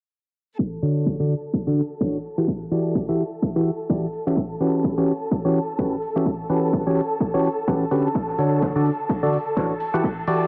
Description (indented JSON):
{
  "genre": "piano house",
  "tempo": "127 BPM",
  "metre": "4/4",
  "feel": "swing 58% on 16ths",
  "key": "A mixolydian",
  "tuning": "A4 = 441 Hz",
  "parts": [
    { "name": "dark symphonic string section", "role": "sustained chords", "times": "0.6-10.5 s", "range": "A4 to A5", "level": "-32 LUFS", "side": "equal", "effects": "vintage 12-bit sampler grit, sidechain pumping" },
    { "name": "electronic kick drum", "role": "drums", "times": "0.6-10.1 s", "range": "none", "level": "-28 LUFS", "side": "equal", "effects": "high-pass filter on kick, high-pass filter on room" },
    { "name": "percussive organ stab", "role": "riff", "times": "0.8-10.5 s", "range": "D3 to F#5", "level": "-24 LUFS", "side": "equal", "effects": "chorus, cassette tape, sidechain pumping, tape echo" },
    { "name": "electronic hi-hat", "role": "drums", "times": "0.8-10.4 s", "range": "none", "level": "-58 LUFS", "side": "equal", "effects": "low-pass filter on hats, low-pass filter on room" },
    { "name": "jazz brush drum kit", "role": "drums", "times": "8.1-10.4 s", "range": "hi-hat, ride cymbal, snare drum", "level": "-43 LUFS", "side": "equal", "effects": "sidechain pumping on cymbals, high-pass filter on cymbals, sidechain pumping on hats, high-pass filter on hats, high-pass filter on snare, high-pass filter on room" }
  ],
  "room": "light reverb, studio reverb",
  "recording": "low-pass filter",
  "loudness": "-23 LUFS",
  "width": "mono",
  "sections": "0.6-10.5 A section",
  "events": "filter sweep on drum 0.6-10.5; filter sweep on synth stab 0.6-10.5; filter sweep 0.6-10.5",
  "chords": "0.6 Dmaj7; 2.2 Em9; 4.1 A13/E; 8.1 Dmaj7; 9.8 Em9",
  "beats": "| 0.59 1.06 1.53 2.01 | 2.48 2.95 3.42 3.90 | 4.37 4.84 5.31 5.79 | 6.26 6.73 7.20 7.68 | 8.15 8.62 9.09 9.56 | 10.04"
}